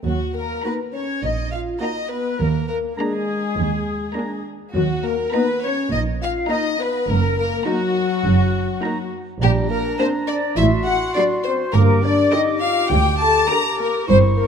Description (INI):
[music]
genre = cinematic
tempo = 103 BPM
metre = 4/4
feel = straight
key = Eb minor, G minor from 9.4 s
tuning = A4 = 439 Hz
[part]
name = marimba with medium mallets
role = melody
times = 0.0-14.5 s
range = Gb4 to Bb5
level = -27 LUFS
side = left 6 dB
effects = none
[part]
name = flute section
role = second line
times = 0.0-14.4 s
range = Gb4 to Bb5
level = -28 LUFS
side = left 2 dB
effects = none
[part]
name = warm chamber violin section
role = second line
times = 0.0-14.5 s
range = Gb4 to Bb5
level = -24 LUFS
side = left 4 dB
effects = none
[part]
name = warm French horn section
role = sustained chords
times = 0.0-14.5 s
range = Gb3 to Bb4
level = -25 LUFS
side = left 3 dB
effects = none
[part]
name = warm chamber double bass section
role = bass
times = 0.0-14.5 s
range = Gb1 to Eb2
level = -22 LUFS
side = right 4 dB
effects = none
[part]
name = dark chamber cello section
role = bass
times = 0.1-14.5 s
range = D2 to Bb2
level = -22 LUFS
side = right 3 dB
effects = none
[part]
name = warm chamber violin section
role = melody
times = 0.6-13.9 s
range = Bb5 to D6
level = -35 LUFS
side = equal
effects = none
[part]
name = mellow clarinet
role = second line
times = 0.6-14.5 s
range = D4 to G4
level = -30 LUFS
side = equal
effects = none
[part]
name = warm oboe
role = second line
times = 0.6-14.5 s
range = Bb5 to D6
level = -30 LUFS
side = right 2 dB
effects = none
[part]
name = warm chamber viola section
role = accompaniment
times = 0.6-13.9 s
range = D3 to G4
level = -28 LUFS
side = right 2 dB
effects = none
[sound]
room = moderate scoring stage reverb, RT60 2.0 s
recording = none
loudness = -17 LUFS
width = side -7 dB against mid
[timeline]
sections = 0.1-14.5 A section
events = none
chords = 0.1 Ebm; 2.4 Bb7/Eb; 4.7 Eb5; 7.1 Ebm/Gb; 9.4 Bb69; 10.6 F#dim/A; 11.7 G5